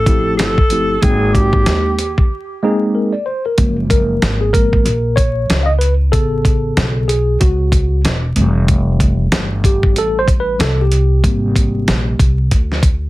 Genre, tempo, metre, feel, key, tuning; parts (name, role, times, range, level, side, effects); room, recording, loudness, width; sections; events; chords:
hip hop, jazz-hop; 94 BPM; 4/4; swing 60% on 16ths; A4 = 439 Hz
breathy alto saxophone; melody; 0.0-2.3 s; G4 to A4; -18 LUFS; equal; analog delay
upright bass; bass; 0.0-13.1 s; E1 to D#2; -16 LUFS; equal
mellow tine electric piano; accompaniment; 0.1-12.4 s; B#2 to G5; -18 LUFS; equal; medium stereo tremolo
dusty soul sampler-style drum kit; drums; 0.1-13.0 s; hi-hat, kick drum, snare drum; -14 LUFS; equal
light reverb; heavily compressed radio sound, vinyl crackle; -12 LUFS; side -18 dB against mid
0.0-3.6 A section; 3.6-13.1 B section
break 2.3-3.6; tine electric piano solo 3.6-13.1
0.0 Fmaj9; 1.0 G#maj9; 3.6 F#maj9; 6.1 Amaj9; 8.4 Fmaj9; 11.2 G#maj9